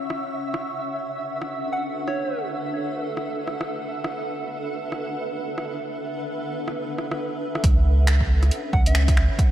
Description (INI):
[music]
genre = future garage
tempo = 137 BPM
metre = 4/4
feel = swing 60% on 16ths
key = unclear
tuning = A4 = 439 Hz
[part]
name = granular cloud pad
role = sustained chords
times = 0.0-9.5 s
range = C#4 to C#6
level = -29 LUFS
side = equal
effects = built-in reverb, sidechain pumping
[part]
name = flickering grainy texture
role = texture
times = 0.0-7.6 s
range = E5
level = -34 LUFS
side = right 1 dB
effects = built-in reverb
[part]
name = deep house drum kit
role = drums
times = 0.1-9.5 s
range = finger snaps, hi-hat, rim click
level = -31 LUFS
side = equal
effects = overdrive
[part]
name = soft struck synth lead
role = melody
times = 1.7-2.4, 8.7-9.2 s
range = C#5 to F#5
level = -30 LUFS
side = right 2 dB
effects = chorus, analog delay
[part]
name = warm sub bass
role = bass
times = 7.6-9.3 s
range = C#2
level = -18 LUFS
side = equal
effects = sidechain pumping
[part]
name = electronic kick drum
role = drums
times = 7.6-9.5 s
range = none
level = -20 LUFS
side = equal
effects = overdrive
[sound]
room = moderate lush hall reverb, RT60 1.8 s, digital ambience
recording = dreamy mix soaked in reverb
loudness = -22 LUFS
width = side -12 dB against mid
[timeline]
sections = 0.0-7.6 A section; 7.6-9.5 B section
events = filter sweep on ambient pad 0.0-7.6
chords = 0.0 C#m; 0.6 D69; 7.6 C#m7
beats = 0.19 | 0.63 1.07 1.51 1.94 | 2.38 2.82 3.26 3.69 | 4.13 4.57 5.01 5.45 | 5.88 6.32 6.76 7.20 | 7.64 8.07 8.51 8.95 | 9.39